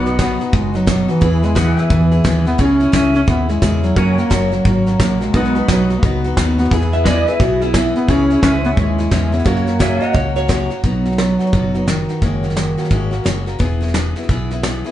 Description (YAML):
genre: honky-tonk and classic country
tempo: 175 BPM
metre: 4/4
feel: swing 63% on 8ths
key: B major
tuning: A4 = 442 Hz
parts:
  - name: dark bass clarinet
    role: melody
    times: 0.0-13.4 s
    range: D#3 to C#4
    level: -17 LUFS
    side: equal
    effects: none
  - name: honky-tonk upright piano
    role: accompaniment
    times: 0.0-10.8 s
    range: B3 to C#5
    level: -27 LUFS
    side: right 2 dB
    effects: none
  - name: picked steel-string acoustic guitar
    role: accompaniment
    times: 0.0-14.9 s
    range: F#2 to G#4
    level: -23 LUFS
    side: left 2 dB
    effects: none
  - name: pedal steel guitar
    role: sustained chords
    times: 0.0-10.8 s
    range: A#4 to A#5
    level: -25 LUFS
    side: left 2 dB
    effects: none
  - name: vintage muted fingered electric bass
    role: bass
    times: 0.0-14.8 s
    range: E1 to F#2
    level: -20 LUFS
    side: equal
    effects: none
  - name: soft brush drum kit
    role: drums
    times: 0.1-14.9 s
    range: hi-hat, kick drum, snare drum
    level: -19 LUFS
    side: equal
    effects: none
  - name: electric guitar through a small old amp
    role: second line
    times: 6.9-7.8, 10.0-10.8 s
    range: E4 to E5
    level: -19 LUFS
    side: right 2 dB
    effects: tape echo
room: moderate studio reverb, RT60 0.7 s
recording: heard from further back in the room, nothing above 10.3 kHz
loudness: -13 LUFS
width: side -12 dB against mid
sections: 0.0-10.8 A section; 10.8-14.9 B section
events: none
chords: 0.0 B; 1.2 E; 2.6 C#m; 4.0 F#; 5.3 B; 6.7 E; 8.1 C#m; 9.5 F#; 10.8 B; 12.2 F#add9; 13.6 E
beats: 0.19 0.54 0.88 | 1.22 1.56 1.91 2.25 | 2.59 2.94 3.28 3.62 | 3.97 4.31 4.65 5.00 | 5.34 5.68 6.03 6.37 | 6.71 7.06 7.40 7.75 | 8.09 8.43 8.78 9.12 | 9.46 9.81 10.15 10.50 | 10.84 11.19 11.53 11.88 | 12.22 12.57 12.91 13.26 | 13.60 13.95 14.29 14.64